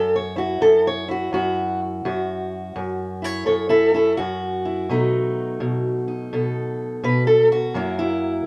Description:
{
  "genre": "acoustic country blues, solo or duo",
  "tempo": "84 BPM",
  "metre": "4/4",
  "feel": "swing 64% on 8ths",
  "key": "unclear",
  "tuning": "A4 = 440 Hz",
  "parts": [
    { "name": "fingerpicked steel-string acoustic guitar", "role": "solo", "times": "0.0-8.5 s", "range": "F#2 to C#5", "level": "-22 LUFS", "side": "equal", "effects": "none" }
  ],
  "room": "light reverb",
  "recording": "band playing live in one room",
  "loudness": "-22 LUFS",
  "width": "mono",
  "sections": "0.0-8.5 A section",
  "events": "steel-string acoustic guitar solo 0.0-8.5",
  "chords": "0.0 F#7(no3); 4.9 B7; 7.7 F#7",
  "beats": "0.62 1.33 | 2.05 2.76 3.48 4.19 | 4.90 5.61 6.32 7.03 | 7.74 8.45"
}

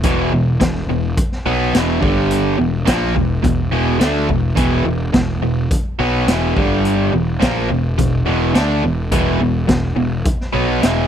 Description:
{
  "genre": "classic rock",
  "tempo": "106 BPM",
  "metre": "4/4",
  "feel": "straight",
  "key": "unclear",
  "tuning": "A4 = 439 Hz",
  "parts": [
    { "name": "cranked stack guitar", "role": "riff", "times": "0.0-11.1 s", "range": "E2 to D4", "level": "-17 LUFS", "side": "right 1 dB", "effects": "overdrive" },
    { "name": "fuzz picked electric bass", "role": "bass", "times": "0.0-11.1 s", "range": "E1 to D2", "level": "-20 LUFS", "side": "equal", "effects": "overdrive" },
    { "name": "raw garage drum kit", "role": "drums", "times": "0.0-11.0 s", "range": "hi-hat, kick drum, snare drum", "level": "-19 LUFS", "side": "equal", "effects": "none" }
  ],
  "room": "studio reverb",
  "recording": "dry, close 1970s-style studio recording",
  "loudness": "-14 LUFS",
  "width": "side -9 dB against mid",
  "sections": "0.0-11.1 A section",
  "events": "none",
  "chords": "0.0 E5; 2.0 G5; 2.6 E5; 6.6 G5; 7.1 E5",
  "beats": "| 0.03 0.60 1.17 1.73 | 2.30 2.87 3.44 4.01 | 4.57 5.14 5.71 6.28 | 6.85 7.41 7.98 8.55 | 9.12 9.69 10.25 10.82"
}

